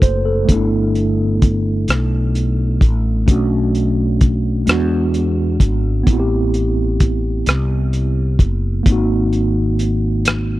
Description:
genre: slow six-eight R&B.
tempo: 43 BPM (dotted quarters).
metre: 6/8.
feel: straight.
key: unclear.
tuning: A4 = 440 Hz.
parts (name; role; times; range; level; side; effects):
mellow tine electric piano; accompaniment; 0.0-10.6 s; G#3 to C5; -19 LUFS; right 1 dB; medium stereo tremolo.
mellow fretless electric bass; bass; 0.0-10.6 s; F#1 to E2; -18 LUFS; equal; wide subtle chorus.
cloth-damped thuddy drum kit; drums; 0.0-10.5 s; hi-hat, kick drum, rim click; -13 LUFS; equal; none.
room: studio reverb.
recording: dry, close 1970s-style studio recording.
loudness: -14 LUFS.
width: side -17 dB against mid.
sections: 0.0-10.6 A section.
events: none.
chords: 0.5 G6; 3.3 Bm7; 4.7 E7; 6.1 Am9; 8.9 G#9.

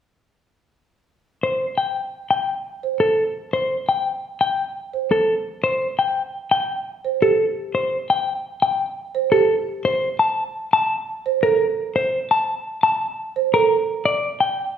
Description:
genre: classical, minimalist pattern music.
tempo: 171 BPM.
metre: 6/4.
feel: straight.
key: A minor.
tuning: A4 = 440 Hz.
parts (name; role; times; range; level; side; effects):
clean electric guitar; melody; 1.4-14.6 s; A4 to A5; -20 LUFS; left 2 dB; none.
folk marimba with soft mallets; arpeggios; 2.8-13.8 s; G4 to C5; -21 LUFS; right 7 dB; none.
room: wet large studio reverb, RT60 1.2 s.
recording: heard from further back in the room.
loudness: -19 LUFS.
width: side -8 dB against mid.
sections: 1.4-14.8 A section.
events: none.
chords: 1.4 Am7 (rootless); 5.6 C5; 9.8 Am; 14.1 G5.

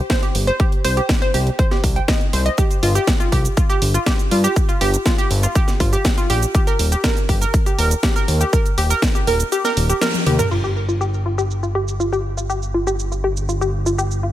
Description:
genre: progressive house.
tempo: 121 BPM.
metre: 4/4.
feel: straight.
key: unclear.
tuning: A4 = 437 Hz.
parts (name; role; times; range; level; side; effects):
analog pluck; arpeggios; 0.1-14.3 s; F4 to G5; -21 LUFS; equal; chorus, sidechain pumping, digital delay.
electronic kick drum; drums; 0.1-9.1 s; none; -17 LUFS; equal; overdrive.
house drum kit; drums; 0.1-14.2 s; crash cymbal, hi-hat, shaker, snare drum, toms; -23 LUFS; right 1 dB; low-pass filter on hats, low-pass filter on snare, low-pass filter on perc, low-pass filter on toms, low-pass filter on cymbals, low-pass filter on room.
fat analog bass; bass; 0.3-14.3 s; Eb1 to G2; -20 LUFS; equal; sidechain pumping.
room: digital ambience.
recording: none.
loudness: -16 LUFS.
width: side -13 dB against mid.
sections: 0.0-10.5 A section; 10.5-14.3 B section.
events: kick drops out 9.5-10.5; drum fill 10.0-10.5; band accent 10.0; filter sweep on drum 10.5-14.3; filter sweep on synth pluck 10.5-14.3.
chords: 0.0 C5; 2.6 G7(no3); 6.5 Eb; 10.5 Fsus2/G.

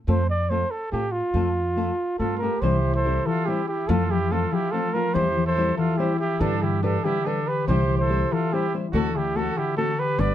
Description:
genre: mexican folk, mariachi.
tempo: 143 BPM.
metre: 3/4.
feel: straight.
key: C major.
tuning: A4 = 444 Hz.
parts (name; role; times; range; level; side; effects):
dark trumpet; melody; 0.1-10.3 s; F4 to D5; -26 LUFS; right 2 dB; none.
flamenco guitar; accompaniment; 0.1-10.3 s; C3 to C5; -28 LUFS; left 3 dB; none.
upright bass; bass; 0.1-10.3 s; G1 to A2; -25 LUFS; right 1 dB; none.
clear trumpet; second line; 2.2-10.3 s; D4 to B4; -32 LUFS; right 7 dB; none.
concert harp; arpeggios; 2.6-10.3 s; D3 to A4; -26 LUFS; left 5 dB; slapback echo.
room: light reverb.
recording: dark, warm production.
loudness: -21 LUFS.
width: side -11 dB against mid.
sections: 0.0-2.6 A section; 2.6-10.3 B section.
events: none.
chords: 0.0 F; 2.6 C; 3.9 F; 5.2 C/E; 6.4 G; 7.7 C; 8.9 D7.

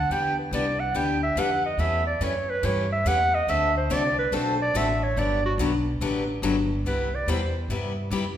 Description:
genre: acoustic string swing (jazz manouche).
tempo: 142 BPM.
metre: 4/4.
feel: swing 64% on 8ths.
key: unclear.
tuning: A4 = 439 Hz.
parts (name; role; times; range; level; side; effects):
breathy clarinet; melody; 0.0-7.6 s; F#4 to G5; -25 LUFS; right 2 dB; none.
upright bass; bass; 0.0-8.4 s; G1 to G2; -28 LUFS; equal; none.
picked steel-string acoustic guitar; accompaniment; 0.1-8.2 s; C3 to A4; -28 LUFS; left 4 dB; none.
room: wet recital hall reverb, RT60 1.4 s.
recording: recorded in a church or concert hall.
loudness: -22 LUFS.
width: side -10 dB against mid.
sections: 0.0-6.9 A section; 6.9-8.4 A section.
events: clarinet solo 0.0-6.9, 6.9-8.4.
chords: 0.1 Em7; 1.8 A7/E; 3.5 D7; 5.2 Gmaj7; 6.9 Cmaj7.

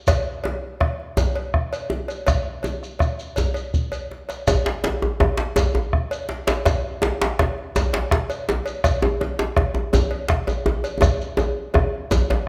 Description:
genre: west african traditional, West African drum ensemble.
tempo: 110 BPM (dotted quarters).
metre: 12/8.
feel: straight.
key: none.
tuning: none.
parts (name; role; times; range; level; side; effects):
bombo; percussion; 0.1-12.2 s; none; -25 LUFS; equal; none.
cowbell; percussion; 0.1-12.5 s; none; -31 LUFS; equal; none.
djembe; percussion; 0.1-12.3 s; none; -28 LUFS; equal; none.
shekere; percussion; 0.1-12.3 s; none; -33 LUFS; equal; none.
djembe; percussion; 4.5-12.5 s; none; -25 LUFS; equal; none.
room: moderate recital hall reverb, RT60 1.3 s.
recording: none.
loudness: -23 LUFS.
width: mono.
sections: 0.0-4.5 A section; 4.5-12.5 B section.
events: drum fill 3.9-4.5, 11.0-12.5.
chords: none.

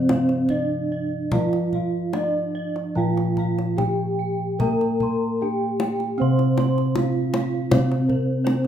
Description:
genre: Javanese gamelan.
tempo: 73-84 BPM.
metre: 4/4.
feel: straight.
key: C slendro.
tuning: A4 = 440 Hz.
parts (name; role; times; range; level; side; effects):
gamelan-type bronze metallophone; melody; 0.0-8.7 s; C4 to C5; -24 LUFS; right 1 dB; none.
gamelan-type bronze metallophone; accompaniment; 0.0-8.7 s; C3 to C4; -26 LUFS; right 2 dB; none.
gamelan-type bossed gongs; arpeggios; 0.0-8.7 s; Bb4-40c to C6; -31 LUFS; left 3 dB; none.
gamelan-type bronze metallophone; arpeggios; 0.0-8.7 s; C5 to C6; -33 LUFS; right 6 dB; none.
gamelan-type bossed gongs; bass; 0.0-8.7 s; Bb2-40c to Bb4-40c; -27 LUFS; left 2 dB; none.
kendang; percussion; 0.1-8.7 s; none; -27 LUFS; left 2 dB; none.
room: moderate recital hall reverb, RT60 1.2 s.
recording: minimal, uncompressed stereo recording.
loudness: -20 LUFS.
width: side -9 dB against mid.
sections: 0.0-8.7 A section.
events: none.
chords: none.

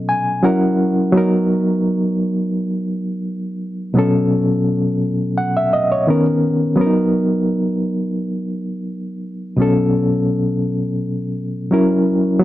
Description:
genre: soul.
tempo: 85 BPM.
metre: 4/4.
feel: swing 54% on 16ths.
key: B major.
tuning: A4 = 440 Hz.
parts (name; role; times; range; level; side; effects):
barky reed electric piano; solo; 0.0-12.4 s; B2 to G#5; -16 LUFS; equal; overdrive, fast tremolo.
room: light reverb.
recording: dry, close 1970s-style studio recording.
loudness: -16 LUFS.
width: side -14 dB against mid.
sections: 0.0-6.8 A section; 6.8-12.4 B section.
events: reed electric piano fill 0.0-1.1.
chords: 0.4 F#7; 1.1 Bmaj7; 4.0 A69/B; 6.1 Bmaj9; 6.8 Bmaj7; 9.6 A69/B; 11.7 F#7.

